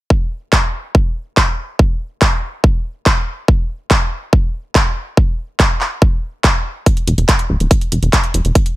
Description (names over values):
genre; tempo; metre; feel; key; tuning
psychedelic trance; 142 BPM; 4/4; straight; unclear; A4 = 440 Hz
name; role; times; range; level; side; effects
electronic kick drum; drums; 0.1-8.6 s; none; -13 LUFS; equal; none
techno drum kit; drums; 0.5-8.7 s; handclaps, hi-hat; -18 LUFS; equal; overdrive
plucky analog bass; bass; 7.1-8.5 s; D1 to E1; -14 LUFS; equal; none
room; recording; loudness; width
digital ambience; none; -13 LUFS; side -17 dB against mid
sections
0.1-8.8 A section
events
none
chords
none